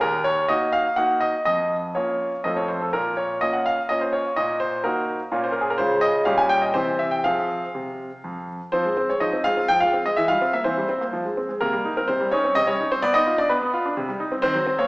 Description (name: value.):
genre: classical-period piano sonatina.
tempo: 126 BPM.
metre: 3/4.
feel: straight.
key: Bb minor, F minor from 5.8 s.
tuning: A4 = 442 Hz.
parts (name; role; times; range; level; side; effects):
bright grand piano; solo; 0.0-14.9 s; Eb2 to Ab5; -20 LUFS; equal; none.
room: wet recital hall reverb, RT60 1.5 s.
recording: recorded in a church or concert hall, small speaker sound.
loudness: -20 LUFS.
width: side -24 dB against mid.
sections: 0.0-8.7 A section; 8.7-14.9 B section.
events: none.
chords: 0.0 Ebm; 1.5 Bbm/F; 2.4 F; 2.9 Bbm; 4.4 Ebm/Bb; 5.3 Bbm; 5.8 Dbmaj7; 6.3 Gdim/Bb; 6.8 C; 7.2 Fm; 10.2 C7/E; 11.1 Fm; 11.6 Cm; 13.0 Bdim; 14.0 Cm.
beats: | 0.02 0.49 0.97 | 1.46 1.96 2.44 | 2.94 3.42 3.90 | 4.37 4.85 5.32 | 5.79 6.26 6.75 | 7.25 7.75 8.24 | 8.73 9.22 9.70 | 10.18 10.66 11.13 | 11.61 12.08 12.55 | 13.03 13.50 13.97 | 14.45.